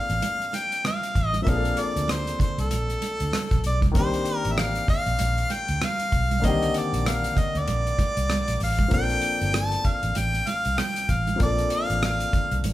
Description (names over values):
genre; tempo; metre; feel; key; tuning
lush 1970s-style soul; 97 BPM; 4/4; swing 58% on 16ths; Bb major; A4 = 440 Hz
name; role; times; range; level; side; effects
warm harmonica; melody; 0.0-12.6 s; A4 to A5; -26 LUFS; equal; none
warm grand piano; accompaniment; 0.0-12.7 s; D3 to A4; -30 LUFS; left 3 dB; none
vintage muted fingered electric bass; bass; 0.1-12.7 s; G1 to D2; -27 LUFS; equal; none
damped 70s drum kit; drums; 0.1-12.7 s; hi-hat, kick drum, rim click; -27 LUFS; equal; none
congas; percussion; 0.2-12.7 s; none; -34 LUFS; right 5 dB; none
room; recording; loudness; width
moderate large studio reverb, RT60 1.1 s; band playing live in one room; -22 LUFS; side -15 dB against mid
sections
0.0-12.7 A section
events
none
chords
0.0 Bbmaj9; 4.0 Cm9; 8.9 Bbmaj9